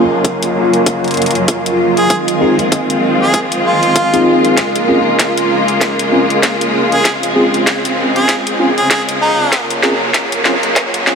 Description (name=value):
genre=glitch hop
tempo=97 BPM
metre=4/4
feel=swing 58% on 16ths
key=unclear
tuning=A4 = 439 Hz
part: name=clear studio string section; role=sustained chords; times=0.0-11.2 s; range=Db3 to F4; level=-16 LUFS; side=left 1 dB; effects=vintage 12-bit sampler grit, sidechain pumping, low-pass filter
part: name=tine electric piano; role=stabs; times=0.0-11.2 s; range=C4 to Ab4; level=-18 LUFS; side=equal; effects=analog chorus, sidechain pumping, analog delay
part: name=granular cloud pad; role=texture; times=0.0-11.2 s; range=Db3 to Ab5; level=-18 LUFS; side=right 2 dB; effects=built-in reverb, sidechain pumping
part: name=drum and bass drum kit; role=drums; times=0.2-11.2 s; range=hi-hat, snare drum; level=-17 LUFS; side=equal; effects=overdrive, high-pass filter on hats, high-pass filter on snare
part: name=electronic kick drum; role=drums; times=0.2-10.9 s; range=none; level=-16 LUFS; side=equal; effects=overdrive, high-pass filter on kick
part: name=clear harmonica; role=melody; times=2.0-9.6 s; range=Eb4 to Ab4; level=-19 LUFS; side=right 1 dB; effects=analog delay
room=wet huge ambient reverb, RT60 4.3 s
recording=dreamy mix soaked in reverb, high-pass filter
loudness=-11 LUFS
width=side -6 dB against mid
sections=0.0-11.2 A section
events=build-up 0.0-11.2; filter sweep 0.0-11.2; drum fill 4.6-11.2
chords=0.0 Gbmaj7; 2.1 Fm7; 4.6 Dbmaj7; 9.5 Gbmaj7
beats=0.25 0.86 1.48 | 2.10 2.72 3.34 3.96 | 4.58 5.20 5.81 6.43 | 7.05 7.67 8.29 8.91 | 9.53 10.14 10.76